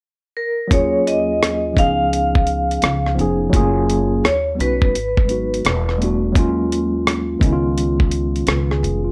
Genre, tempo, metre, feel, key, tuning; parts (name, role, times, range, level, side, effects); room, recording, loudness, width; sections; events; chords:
lo-fi hip hop; 85 BPM; 4/4; swing 65% on 16ths; Eb minor; A4 = 440 Hz
vibraphone with medium hard mallets; melody; 0.4-6.0 s; Bb4 to F5; -22 LUFS; equal
mellow tine electric piano; accompaniment; 0.7-9.1 s; Eb3 to Cb5; -22 LUFS; equal
upright bass; bass; 0.7-9.1 s; E1 to Eb2; -25 LUFS; equal
dusty soul sampler-style drum kit; drums; 0.7-9.0 s; hi-hat, kick drum, rim click; -20 LUFS; equal
moderate studio reverb, RT60 0.6 s; -18 LUFS; mono
0.7-9.1 A section
0.0 N.C.; 0.7 Ebm11; 1.8 Db7; 3.5 Gbmaj9; 4.2 Eb7alt; 4.9 Abm7; 5.6 Em11; 6.4 Ebm11; 7.4 Db7